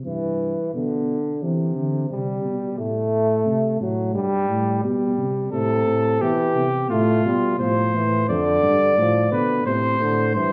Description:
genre	classical, imitative canzona for brass ensemble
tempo	87 BPM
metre	4/4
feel	straight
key	A minor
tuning	A4 = 440 Hz
part	dark tuba	bass	0.0-10.5 s	F2 to E3	-26 LUFS	equal	none
part	mellow trombone	accompaniment	0.1-10.5 s	C3 to A3	-25 LUFS	equal	none
part	mellow flugelhorn	second line	5.5-10.5 s	F4 to D5	-23 LUFS	equal	none
room	wet recital hall reverb, RT60 1.5 s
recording	recorded in a church or concert hall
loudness	-21 LUFS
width	mono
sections	0.0-10.5 A section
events	none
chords	0.1 Em/G; 1.4 C; 2.8 Am; 4.2 Gadd9; 5.5 Am; 6.9 F/A; 8.3 Dm/F; 9.7 Am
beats	| 0.06 0.74 1.42 2.11 | 2.79 3.47 4.15 4.84 | 5.53 6.21 6.90 7.59 | 8.28 8.97 9.66 10.35

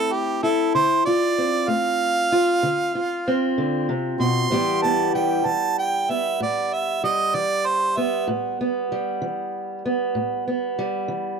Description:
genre	acoustic country blues, solo or duo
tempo	64 BPM (dotted quarters)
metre	12/8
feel	straight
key	A minor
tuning	A4 = 440 Hz
part	clear harmonica	melody	0.0-8.3 s	G4 to C6	-22 LUFS	right 4 dB	none
part	fingerpicked steel-string acoustic guitar	accompaniment	0.0-11.4 s	A2 to G4	-23 LUFS	left 1 dB	none
room	small room reverb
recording	dry, close 1970s-style studio recording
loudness	-20 LUFS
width	side -6 dB against mid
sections	0.0-11.4 A section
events	harmonica solo 0.0-11.4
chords	0.0 Dm9; 4.5 Asus2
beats	| 0.75 1.69 2.63 3.58 | 4.52 5.46 6.40 7.34 | 8.28 9.22 10.16 11.10

